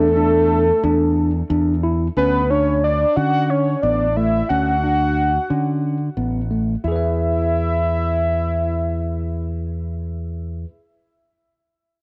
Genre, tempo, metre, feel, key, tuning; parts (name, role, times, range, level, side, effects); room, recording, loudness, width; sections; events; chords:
progressive instrumental, band music in an uneven meter; 180 BPM (eighths); 7/8; straight; E mixolydian; A4 = 444 Hz
fat analog lead; melody; 0.0-9.9 s; A4 to F#5; -22 LUFS; equal; chorus, cassette tape, tape echo
tine electric piano; arpeggios; 0.0-10.7 s; A3 to E5; -26 LUFS; equal; cassette tape
modern bright fingered electric bass; bass; 0.0-10.6 s; A1 to D3; -24 LUFS; equal
moderate spring reverb, RT60 1.2 s; home recording on cassette; -19 LUFS; mono
0.0-2.2 A section; 2.2-6.8 B section; 6.8-9.2 C section
0.0 E7sus4; 2.2 Dmaj7; 6.8 E